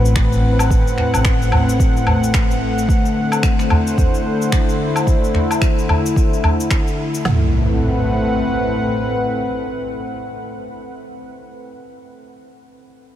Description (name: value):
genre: organic downtempo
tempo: 110 BPM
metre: 4/4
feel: swing 59% on 16ths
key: A dorian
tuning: A4 = 440 Hz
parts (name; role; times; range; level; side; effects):
- warm analog pad; sustained chords; 0.0-10.9 s; A2 to F#5; -19 LUFS; left 1 dB; chorus, sidechain pumping
- upright bass; bass; 0.0-2.9 s; A1; -18 LUFS; equal; sidechain pumping
- sub drop and impact; sound effects; 0.0-0.7, 7.3-10.6 s; none; -23 LUFS; equal; none
- electronic cabasa, finger snaps and woodblock; drums; 0.1-7.2 s; none; -24 LUFS; left 2 dB; overdrive
- organic electronic drum kit; drums; 0.2-7.4 s; kick drum, snare drum, toms; -17 LUFS; equal; none
- udu; percussion; 1.0-6.6 s; none; -18 LUFS; right 1 dB; none
room: moderate huge ambient reverb, RT60 7.7 s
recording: dreamy mix soaked in reverb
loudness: -14 LUFS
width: side -12 dB against mid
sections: 0.0-7.2 A section; 7.2-11.6 B section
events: impact 0.0-0.7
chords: 0.0 Am69; 2.9 D7; 7.2 Am69